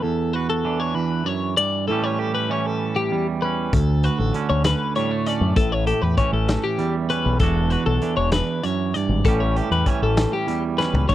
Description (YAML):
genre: math rock and midwest emo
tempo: 65 BPM (dotted quarters)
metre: 6/8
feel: straight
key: unclear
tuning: A4 = 440 Hz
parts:
  - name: twangy electric guitar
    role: accompaniment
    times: 0.0-11.1 s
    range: D2 to G4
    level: -23 LUFS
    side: right 6 dB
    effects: none
  - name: twelve-string electric guitar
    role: arpeggios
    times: 0.0-11.1 s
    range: G4 to D5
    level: -24 LUFS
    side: left 5 dB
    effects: none
  - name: growling fingered electric bass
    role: bass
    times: 3.7-11.1 s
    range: E1 to F#2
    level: -21 LUFS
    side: left 1 dB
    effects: overdrive
  - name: loose indie drum kit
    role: drums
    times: 3.7-11.1 s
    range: crash cymbal, hi-hat, kick drum, snare drum, toms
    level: -23 LUFS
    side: left 1 dB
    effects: none
room: little or no reverb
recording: dry, close 1970s-style studio recording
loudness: -19 LUFS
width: side -13 dB against mid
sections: 0.0-11.1 A section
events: drum fill 10.8-11.1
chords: 0.0 Em9; 1.9 A7; 3.7 Dmaj7; 5.6 A7; 7.4 Em9; 9.2 A7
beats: | 0.04 0.96 | 1.88 2.80 | 3.72 4.64 | 5.56 6.48 | 7.40 8.32 | 9.24 10.16 | 11.08